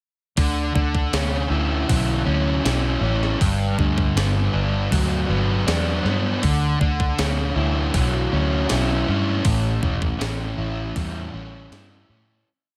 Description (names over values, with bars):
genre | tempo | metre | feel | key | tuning
rock, shoegaze and dream pop | 79 BPM | 4/4 | straight | D major | A4 = 441 Hz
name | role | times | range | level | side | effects
fuzz guitar | riff | 0.4-12.5 s | G2 to E4 | -25 LUFS | equal | distortion, subtle chorus
vintage muted fingered electric bass | bass | 0.4-12.4 s | E1 to A2 | -25 LUFS | equal | none
gated 80s digital drum machine | drums | 0.4-11.9 s | hi-hat, kick drum, snare drum | -27 LUFS | equal | gated reverb, gated reverb snare
room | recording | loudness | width
little or no reverb | none | -22 LUFS | mono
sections
0.4-12.5 verse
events
fade-out 9.4-12.5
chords
0.4 Dmaj9; 3.4 Gmaj7; 6.4 Dmaj9; 9.4 A7